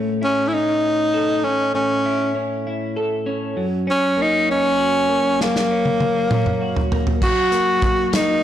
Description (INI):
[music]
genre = six-eight pop ballad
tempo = 66 BPM (dotted quarters)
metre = 6/8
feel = straight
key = unclear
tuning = A4 = 440 Hz
[part]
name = twelve-string electric guitar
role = accompaniment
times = 0.0-8.4 s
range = F#2 to A4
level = -24 LUFS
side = left 1 dB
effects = none
[part]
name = clear tenor saxophone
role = melody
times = 0.2-8.4 s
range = A#3 to F#4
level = -18 LUFS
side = equal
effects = none
[part]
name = natural country drum kit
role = drums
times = 5.4-8.3 s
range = crash cymbal, hi-hat, kick drum, snare drum, toms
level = -21 LUFS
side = right 1 dB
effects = soft clipping on snare
[sound]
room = moderate echo chamber reverb, RT60 2.1 s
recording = blown-out, overdriven recording, overdrive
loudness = -17 LUFS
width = side -11 dB against mid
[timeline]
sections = 0.0-7.2 A section; 7.2-8.4 B section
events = drum fill 5.4-7.2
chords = 0.0 A; 3.6 F#